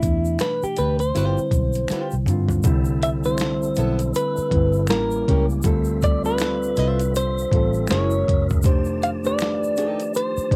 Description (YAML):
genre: R&B, neo-soul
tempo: 80 BPM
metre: 4/4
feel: swing 59% on 16ths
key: C major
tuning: A4 = 441 Hz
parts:
  - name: clean electric guitar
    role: melody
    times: 0.0-10.6 s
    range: E4 to F5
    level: -26 LUFS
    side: equal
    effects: cassette tape
  - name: reed electric piano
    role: accompaniment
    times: 0.0-10.6 s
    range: B2 to D5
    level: -28 LUFS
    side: equal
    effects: none
  - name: vintage muted fingered electric bass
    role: bass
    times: 0.0-10.6 s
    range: F1 to G2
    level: -26 LUFS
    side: equal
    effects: transformer saturation
  - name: dusty soul sampler-style drum kit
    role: drums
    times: 0.0-10.6 s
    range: finger snaps, hi-hat, kick drum, snare drum, toms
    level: -25 LUFS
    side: equal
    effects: cassette tape
  - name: egg shaker and finger snaps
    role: percussion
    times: 0.0-10.5 s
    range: none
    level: -40 LUFS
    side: equal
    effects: none
  - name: flamenco guitar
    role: second line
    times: 0.4-10.0 s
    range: B3 to E5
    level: -31 LUFS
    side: equal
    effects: none
  - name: percussive tonewheel organ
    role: sustained chords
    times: 2.6-10.6 s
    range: D3 to A5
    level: -39 LUFS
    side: equal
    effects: slow rotary speaker, overdrive, chorus vibrato
room: light reverb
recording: home recording on cassette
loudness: -21 LUFS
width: mono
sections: 0.0-2.6 A section; 2.6-10.6 B section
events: drum fill 1.9-2.6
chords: 0.0 Em7; 1.1 G7sus4; 2.6 Cmaj13; 4.9 A7b9; 5.6 Dm9; 7.9 F#9; 8.6 F9